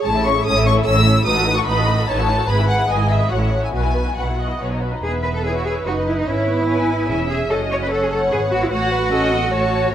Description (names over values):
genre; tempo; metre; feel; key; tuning
quick classical-period movement for string orchestra; 147 BPM; 3/4; rubato; E major; A4 = 439 Hz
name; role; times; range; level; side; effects
warm symphonic violin section; melody; 0.0-9.9 s; C#5 to E6; -23 LUFS; left 4 dB; none
rich symphonic viola section; accompaniment; 0.0-9.9 s; A3 to D#5; -25 LUFS; right 2 dB; none
bright symphonic cello section; bass; 0.0-9.9 s; G#2 to C#5; -22 LUFS; right 1 dB; none
rich symphonic double bass section; bass; 0.0-9.9 s; E1 to B1; -21 LUFS; right 1 dB; none
dark symphonic violin section; second line; 0.1-9.9 s; C#4 to F#5; -23 LUFS; left 1 dB; none
room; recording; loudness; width
light reverb; none; -16 LUFS; side -10 dB against mid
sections
0.0-5.0 A section; 5.0-9.9 B section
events
none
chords
0.0 A; 1.3 B7/A; 2.5 E/G#; 3.3 F#m7/A; 3.7 Bsus4; 4.6 B; 5.0 E; 6.3 E/G#; 7.5 F#m; 8.7 F#m/A